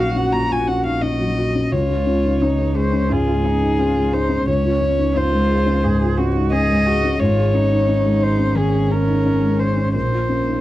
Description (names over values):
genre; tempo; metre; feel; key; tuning
neoclassical piano and strings; 87 BPM; 4/4; rubato; Db major; A4 = 440 Hz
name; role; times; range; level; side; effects
muted violin; melody; 0.0-10.6 s; Ab4 to Bb5; -22 LUFS; left 2 dB; none
muted cello; second line; 0.0-10.6 s; Bb3 to Ab4; -26 LUFS; right 7 dB; none
felt-muted upright piano; accompaniment; 0.0-10.6 s; Db2 to Ab4; -20 LUFS; left 2 dB; none
muted double bass; bass; 0.0-10.6 s; Ab1 to Db2; -21 LUFS; right 1 dB; none
room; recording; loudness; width
small room ambience; dry, close 1970s-style studio recording; -16 LUFS; side -15 dB against mid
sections
0.0-10.6 A section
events
none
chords
0.0 Gbmaj7/Bb; 1.7 Dbmaj7; 7.2 Absus4; 9.9 Gbmaj7/Bb (rootless)